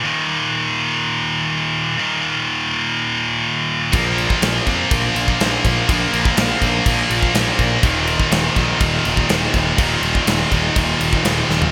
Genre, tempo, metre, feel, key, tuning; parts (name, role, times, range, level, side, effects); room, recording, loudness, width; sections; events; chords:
heavy metal; 123 BPM; 4/4; straight; A4 = 441 Hz
scooped high-gain guitar; riff; 0.0-11.7 s; Eb2 to Bb3; -20 LUFS; equal; distortion
heavy high-gain guitar; riff; 3.9-11.7 s; Eb2 to Bb3; -25 LUFS; equal; distortion
fuzz picked electric bass; bass; 3.9-11.7 s; Eb1 to F2; -25 LUFS; equal; overdrive
big rock drum kit; drums; 3.9-11.7 s; crash cymbal, kick drum, snare drum, toms; -22 LUFS; equal; gated reverb
light reverb, studio ambience; bright 1980s-style digital production; -18 LUFS; mono
0.0-11.7 A section
drum fill 11.5
0.0 Eb5; 3.9 Bb5; 7.8 Eb5